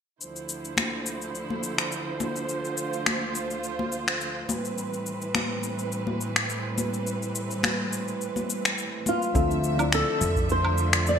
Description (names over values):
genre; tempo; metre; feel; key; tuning
sunset chillout; 105 BPM; 4/4; swing 54% on 16ths; D minor; A4 = 440 Hz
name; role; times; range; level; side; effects
warm studio string section; sustained chords; 0.2-11.2 s; D2 to E5; -31 LUFS; right 2 dB; none
electronic shaker, finger snaps and woodblock; drums; 0.2-11.2 s; none; -27 LUFS; left 2 dB; gated reverb
congas; percussion; 0.8-9.2 s; none; -34 LUFS; left 3 dB; none
flamenco guitar; melody; 9.1-11.2 s; F4 to D5; -26 LUFS; left 1 dB; analog chorus, ping-pong delay
mellow FM electric piano; accompaniment; 9.3-11.2 s; F3 to E5; -31 LUFS; equal; chorus, tremolo, auto-pan, ping-pong delay
upright bass; bass; 9.3-11.2 s; D2 to F2; -26 LUFS; equal; none
electronic kick drum; drums; 9.3-10.6 s; none; -28 LUFS; equal; overdrive
room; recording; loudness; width
moderate plate reverb, RT60 2.0 s, studio ambience; bright 1980s-style digital production; -25 LUFS; side -7 dB against mid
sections
0.2-9.4 A section; 9.4-11.2 B section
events
none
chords
0.2 Dm9; 4.5 Am9; 9.4 Dm9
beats
| 0.21 0.78 1.35 1.92 | 2.50 3.07 3.64 4.21 | 4.78 5.35 5.92 6.50 | 7.07 7.64 8.21 8.78 | 9.35 9.92 10.49 11.07